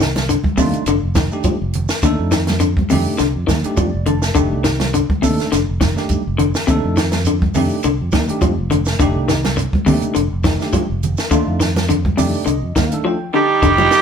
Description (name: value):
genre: afrobeat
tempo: 103 BPM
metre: 4/4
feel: swing 54% on 16ths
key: F mixolydian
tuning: A4 = 441 Hz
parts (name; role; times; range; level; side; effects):
- electric guitar through a small old amp; arpeggios; 0.0-14.0 s; C3 to F3; -19 LUFS; left 5 dB; none
- fingered electric bass; bass; 0.0-13.9 s; F1 to F2; -20 LUFS; right 1 dB; none
- compact cocktail drum kit; drums; 0.0-14.0 s; hi-hat, kick drum, snare drum; -21 LUFS; equal; none
- shekere; percussion; 0.0-14.0 s; none; -28 LUFS; right 4 dB; none
- congas; percussion; 0.2-13.9 s; none; -24 LUFS; right 3 dB; none
- bell-like tine electric piano; accompaniment; 0.6-13.6 s; A3 to A5; -23 LUFS; right 2 dB; fast stereo tremolo
- breathy alto saxophone; second line; 13.3-14.0 s; Eb4; -22 LUFS; right 8 dB; none
- raspy baritone saxophone; second line; 13.3-14.0 s; G3; -19 LUFS; right 10 dB; none
- growling tenor saxophone; melody; 13.4-14.0 s; G4; -13 LUFS; right 3 dB; none
room: moderate studio reverb, RT60 0.9 s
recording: band playing live in one room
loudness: -14 LUFS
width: side -7 dB against mid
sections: 0.0-13.6 A section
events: tine electric piano fill 3.5-4.4, 11.9-13.6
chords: 0.0 F13